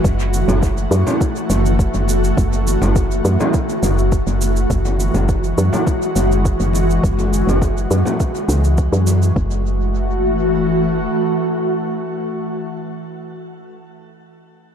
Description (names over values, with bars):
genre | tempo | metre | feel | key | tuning
organic downtempo | 103 BPM | 4/4 | straight | F# minor | A4 = 440 Hz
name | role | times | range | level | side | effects
ethereal airy pad | sustained chords | 0.0-12.5 s | E3 to F#4 | -20 LUFS | equal | ensemble chorus, built-in reverb, sidechain pumping, shimmer reverb
woody FM bass | bass | 0.0-11.1 s | F#1 to F#2 | -17 LUFS | equal | sidechain pumping
electronic kick drum | drums | 0.0-9.5 s | none | -18 LUFS | equal | none
shaker | drums | 0.0-9.3 s | none | -31 LUFS | right 4 dB | tape echo
congas | percussion | 0.2-9.2 s | none | -25 LUFS | left 1 dB | tape echo
room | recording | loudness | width
light reverb | echo-heavy mix | -15 LUFS | side -8 dB against mid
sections
0.0-9.4 A section; 9.4-11.7 B section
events
none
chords
0.0 F#m7; 4.7 Eadd9/F#; 9.4 F#m7